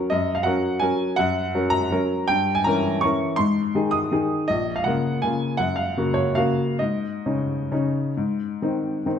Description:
classical, piano waltz; 128-180 BPM; 3/4; rubato; A4 = 440 Hz
clear upright piano; solo; 0.0-9.2 s; Bb1 to Eb6; -20 LUFS; left 1 dB
moderate large studio reverb, RT60 1.3 s; -20 LUFS; side -8 dB against mid
0.0-9.2 A section
0.1 Gb; 2.3 Gdim7; 3.4 Ab; 4.5 Bbm; 5.6 Gbmaj7; 6.8 Absus4; 8.2 Ab

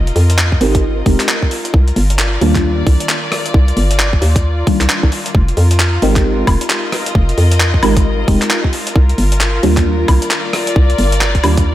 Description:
UK garage, two-step garage; 133 BPM; 4/4; swing 61% on 16ths; F dorian; A4 = 438 Hz
deep mellow chord stab; stabs; 0.0-11.6 s; Eb3 to Bb4; -19 LUFS; right 1 dB; chorus, phaser, diffuse ambient delay
hollow knocking FM bass; bass; 0.0-11.7 s; F1 to F2; -13 LUFS; equal
clear symphonic string section; texture; 0.0-11.7 s; F4 to Eb5; -22 LUFS; left 2 dB; sidechain pumping
breakbeat sampler-style drum kit; drums; 0.1-11.6 s; handclaps, hi-hat, rim click, woodblock; -18 LUFS; equal; overdrive
electronic kick drum; drums; 0.5-11.6 s; -14 LUFS; equal
moderate lush hall reverb, RT60 1.9 s; dreamy mix soaked in reverb; -11 LUFS; side -14 dB against mid
0.0-11.7 A section
0.0 Fm11; 1.7 Cm11; 5.3 Fm11; 9.0 Cm11

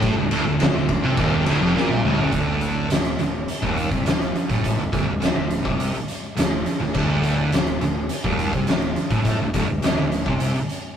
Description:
stoner and doom metal; 104 BPM; 4/4; straight; A4 = 440 Hz
distorted electric guitar; riff; 0.0-2.3 s; D2 to C3; -26 LUFS; equal; overdrive
thick fuzz guitar; riff; 0.0-10.5 s; D2 to C3; -25 LUFS; equal; distortion
thick fuzz guitar; riff; 0.0-10.6 s; D2 to C3; -27 LUFS; right 3 dB; distortion
fuzz fingered electric bass; bass; 0.0-10.5 s; D1 to C2; -30 LUFS; equal; overdrive
oversized low-tuned drum kit; drums; 0.0-10.8 s; crash cymbal, hi-hat, kick drum, ride cymbal, snare drum, toms; -22 LUFS; equal
moderate booth ambience, RT60 0.2 s; rough rehearsal-room recording, tube saturation; -19 LUFS; side -8 dB against mid
0.0-2.3 A section; 2.3-11.0 B section
drum fill 1.8-2.3
0.0 Dm; 2.3 D5

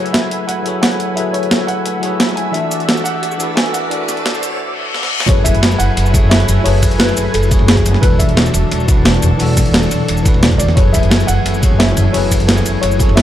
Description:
liquid drum and bass; 175 BPM; 4/4; straight; F# minor; A4 = 439 Hz
bell-like tine electric piano; accompaniment; 0.0-13.2 s; E3 to C#5; -21 LUFS; left 1 dB; fast stereo tremolo, ping-pong delay
lush unison pad; sustained chords; 0.0-13.2 s; E3 to G#5; -22 LUFS; equal; chorus, sidechain pumping
riser and reverse cymbal; sound effects; 0.0-5.3 s; -25 LUFS; left 3 dB
dark baby grand piano; melody; 0.1-13.2 s; G#4 to G#5; -21 LUFS; left 2 dB; ping-pong delay
breakbeat sampler-style drum kit; drums; 0.1-13.2 s; hi-hat, shaker, snare drum; -17 LUFS; right 1 dB; overdrive
upright bass; bass; 5.3-13.2 s; E1 to E2; -15 LUFS; equal
crunchy breakbeat drum kit; drums; 5.3-13.2 s; hi-hat, ride cymbal, snare drum; -24 LUFS; equal; high-pass filter on cymbals, high-pass filter on hats, high-pass filter on snare, high-pass filter on room
electronic kick drum; drums; 5.3-13.1 s; -14 LUFS; equal; overdrive
light reverb, small room reverb; dark, warm production, high-pass filter; -11 LUFS; side -12 dB against mid
0.0-5.3 A section; 5.3-13.2 B section
build-up 0.0-5.3; riser 0.0-4.6; filter sweep 0.0-5.3; reverse cymbal 4.6-5.3; drum fill 4.9-5.3; drop 5.3-13.2
0.0 F#m11; 2.5 E9sus4; 5.3 F#m11; 8.0 E9sus4; 10.8 F#m11

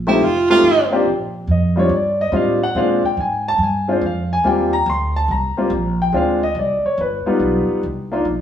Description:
jazz; 142 BPM; 4/4; swing 67% on 8ths; Bb major; A4 = 440 Hz
upright bass; bass; 0.0-8.4 s; F1 to Bb2; -22 LUFS; right 1 dB
bright tenor saxophone; second line; 0.1-0.9 s; E4 to F4; -15 LUFS; right 3 dB
clear grand piano; accompaniment; 0.1-8.2 s; G3 to C6; -17 LUFS; left 1 dB
wet stone room reverb, RT60 1.0 s; band playing live in one room, small room ambience; -15 LUFS; side -9 dB against mid
0.0-1.1 A section; 1.1-8.4 A section
tenor saxophone solo 0.0-1.1
0.2 F9; 1.1 Bb69; 2.8 Bb9; 4.4 Eb69; 6.1 Dm7b5; 7.0 Gaug7; 7.8 Cm11

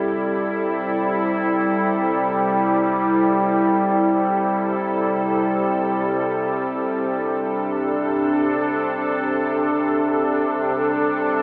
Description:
ambient; free time; A minor; A4 = 440 Hz
evolving wavetable pad; solo; 0.0-11.4 s; C3 to A4; -18 LUFS; equal; chorus, built-in reverb, diffuse ambient delay
wet concert hall reverb, RT60 2.1 s; cassette tape, small speaker sound; -18 LUFS; side -37 dB against mid
0.0-11.4 A section
0.0 Am7

